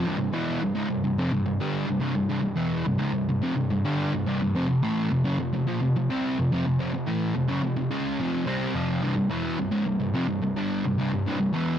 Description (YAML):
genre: metal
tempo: 107 BPM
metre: 4/4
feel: straight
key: unclear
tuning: A4 = 439 Hz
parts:
  - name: sludgy distorted guitar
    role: solo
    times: 0.0-11.8 s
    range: C2 to Db4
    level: -24 LUFS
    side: equal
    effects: overdrive
room: little or no reverb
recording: dark, warm production, nothing above 10.5 kHz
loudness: -24 LUFS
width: side -9 dB against mid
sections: 0.0-9.0 A section; 9.0-11.8 B section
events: none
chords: 0.1 C; 4.6 F5; 9.0 C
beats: | 0.07 0.63 1.19 1.75 | 2.31 2.87 3.43 3.99 | 4.55 5.11 5.67 6.23 | 6.79 7.35 7.91 8.47 | 9.03 9.58 10.14 10.70 | 11.25